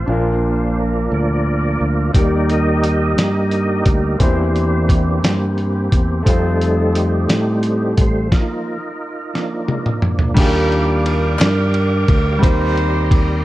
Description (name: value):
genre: slow gospel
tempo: 58 BPM (dotted quarters)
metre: 6/8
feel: straight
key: Eb major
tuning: A4 = 436 Hz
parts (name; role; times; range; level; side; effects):
- clear concert grand piano; accompaniment; 0.0-13.4 s; Bb2 to C5; -23 LUFS; left 1 dB; none
- tonewheel organ; sustained chords; 0.0-13.4 s; E3 to D6; -20 LUFS; right 1 dB; fast rotary speaker, chorus vibrato
- fingered electric bass; bass; 0.0-13.4 s; A1 to A2; -18 LUFS; equal; transformer saturation
- dusty soul sampler-style drum kit; drums; 2.1-13.3 s; crash cymbal, hi-hat, kick drum, ride cymbal, snare drum, toms; -17 LUFS; equal; none
- mellow saxophone section; melody; 10.4-13.4 s; Bb3 to C5; -21 LUFS; right 3 dB; none
- group handclap; percussion; 11.4-11.7 s; none; -28 LUFS; left 3 dB; none
room: light reverb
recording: worn, warbling old tape, cassette tape, warbly pitch drift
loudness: -14 LUFS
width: side -16 dB against mid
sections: 0.0-10.4 A section; 10.4-13.4 B section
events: tonewheel organ solo 0.0-10.4; stop 8.3-10.4; drum fill 9.3-10.4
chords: 0.1 Bb; 2.1 Eb; 4.2 C7/E; 6.3 F7; 8.3 Bbsus4; 9.3 Bb; 10.4 Ebmaj9; 12.4 Cm7/Eb